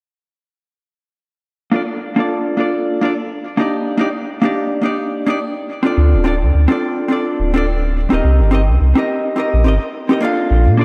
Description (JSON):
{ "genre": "sunset chillout", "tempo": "106 BPM", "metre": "4/4", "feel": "swing 57% on 16ths", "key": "Bb major", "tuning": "A4 = 440 Hz", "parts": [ { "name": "vintage hollow-body jazz guitar", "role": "accompaniment", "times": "1.7-10.8 s", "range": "Bb3 to F5", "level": "-19 LUFS", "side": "equal", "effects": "low-pass filter, delay" }, { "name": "warm sub bass", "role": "bass", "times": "6.0-10.8 s", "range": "D1 to Bb2", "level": "-15 LUFS", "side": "equal", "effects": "none" } ], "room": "moderate plate reverb, RT60 3.0 s", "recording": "dreamy mix soaked in reverb", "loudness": "-17 LUFS", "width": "mono", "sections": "1.4-10.5 A section", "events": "none", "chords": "1.4 Bbmaj7; 3.4 Ebmaj7; 6.0 Dm7; 8.2 Cm7" }